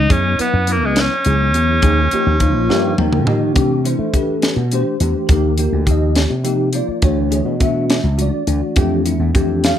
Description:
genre	electric jazz fusion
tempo	69 BPM (dotted quarters)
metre	6/8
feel	straight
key	C major from 3.6 s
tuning	A4 = 436 Hz
part	edgy tenor saxophone	melody	0.0-3.0 s	Ab3 to Eb4	-19 LUFS	right 1 dB	tape echo
part	bell-like tine electric piano	accompaniment	0.0-9.8 s	E3 to G5	-19 LUFS	left 1 dB	fast stereo tremolo, ensemble chorus
part	slap bass with an envelope filter	bass	0.0-9.7 s	Bb1 to A3	-18 LUFS	equal	none
part	tight funk drum kit	drums	0.1-9.8 s	hi-hat, kick drum, snare drum, toms	-18 LUFS	equal	none
room	light reverb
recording	none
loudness	-14 LUFS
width	side -10 dB against mid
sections	0.0-3.6 A section; 3.6-9.8 B section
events	drum fill 2.7-3.6; tine electric piano fill 2.7-3.6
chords	0.1 Gb9sus4; 1.8 Eb9sus4; 2.7 Ebadd9; 3.6 Cmaj9; 5.3 Ebmaj9; 7.0 Dmaj9; 8.8 Fmaj9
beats	| 0.10 0.96 | 1.83 2.69 | 3.56 4.43 | 5.30 6.16 | 7.03 7.90 | 8.77 9.64

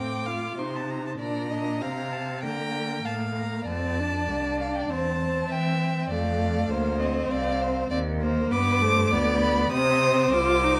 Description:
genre	quick classical-period movement for string quartet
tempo	99 BPM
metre	4/4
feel	rubato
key	unclear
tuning	A4 = 440 Hz
part	warm violin	melody	0.0-10.8 s	Eb5 to Eb6	-32 LUFS	equal	none
part	warm violin	second line	0.0-10.8 s	B4 to G5	-32 LUFS	equal	none
part	warm viola	accompaniment	0.0-10.8 s	A3 to F4	-31 LUFS	equal	none
part	rich cello	bass	0.0-10.8 s	C2 to E3	-31 LUFS	equal	none
room	wet recital hall reverb, RT60 1.5 s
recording	none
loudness	-26 LUFS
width	mono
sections	0.0-10.8 A section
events	none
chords	0.0 F7/A; 1.2 Bb; 3.7 F; 4.9 C/E; 6.1 F; 8.5 G; 9.7 Cm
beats	0.58 | 1.20 1.82 2.43 3.05 | 3.68 4.29 4.90 5.51 | 6.11 6.71 7.31 7.92 | 8.52 9.12 9.72 10.33

